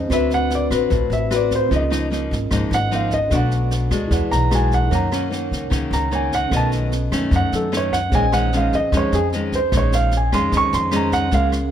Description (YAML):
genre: bossa nova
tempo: 150 BPM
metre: 4/4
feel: straight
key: Bb minor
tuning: A4 = 436 Hz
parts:
  - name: nylon-string guitar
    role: accompaniment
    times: 0.0-11.7 s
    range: F2 to B4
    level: -23 LUFS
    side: left 4 dB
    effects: none
  - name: tine electric piano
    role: accompaniment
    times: 0.0-11.7 s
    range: C4 to F#5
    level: -27 LUFS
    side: right 6 dB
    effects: medium stereo tremolo
  - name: upright bass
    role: bass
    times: 0.0-11.7 s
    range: Ab1 to Gb2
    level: -22 LUFS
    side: equal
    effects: none
  - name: warm grand piano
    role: melody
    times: 0.1-11.5 s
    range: Ab4 to Db6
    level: -21 LUFS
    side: right 2 dB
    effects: none
  - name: jazz brush drum kit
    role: drums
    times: 0.1-11.6 s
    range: kick drum, rim click, snare drum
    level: -26 LUFS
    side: equal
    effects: none
room: light reverb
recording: none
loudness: -17 LUFS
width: side -10 dB against mid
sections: 0.0-11.3 A section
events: grand piano solo 0.0-11.7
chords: 0.1 D13; 1.7 Db69; 3.3 Bm7; 4.1 E9; 4.9 Gb6; 6.5 B9; 8.1 Bbm11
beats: | 0.10 0.50 0.90 1.30 | 1.70 2.10 2.51 2.91 | 3.31 3.71 4.11 4.51 | 4.91 5.31 5.71 6.11 | 6.51 6.92 7.32 7.72 | 8.12 8.52 8.92 9.32 | 9.72 10.12 10.52 10.92 | 11.32